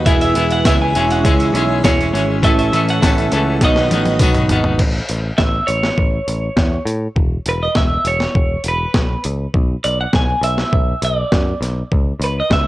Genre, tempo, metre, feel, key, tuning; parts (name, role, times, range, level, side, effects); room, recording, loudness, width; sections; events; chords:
indie rock; 101 BPM; 4/4; straight; A4 = 440 Hz
string machine, full ensemble; sustained chords; 0.0-4.8 s; F#4 to E6; -31 LUFS; left 1 dB
crunchy overdriven guitar; riff; 0.0-4.8 s; D#3 to A4; -20 LUFS; left 5 dB; harmonic tremolo
raw garage guitar; riff; 0.0-4.8 s; A2 to E4; -20 LUFS; right 4 dB; overdrive, analog chorus
picked electric bass; bass; 0.0-12.7 s; E1 to A2; -20 LUFS; equal
twelve-string electric guitar; melody; 0.1-12.7 s; B4 to G#5; -20 LUFS; right 2 dB; spring reverb, plate reverb, analog delay
breakbeat sampler-style drum kit; drums; 0.1-12.6 s; crash cymbal, hi-hat, kick drum, snare drum, toms; -17 LUFS; equal
tambourine; percussion; 0.7-4.3 s; -32 LUFS; right 5 dB
light reverb; worn, warbling old tape, cassette tape, warbly pitch drift; -14 LUFS; side -16 dB against mid
0.0-4.8 A section; 4.8-12.7 B section
drum fill 3.6-4.8
0.1 Eadd9; 1.0 C#m7/E; 2.4 A; 3.6 B; 4.8 A; 7.2 E5; 9.5 Bm; 11.9 C#5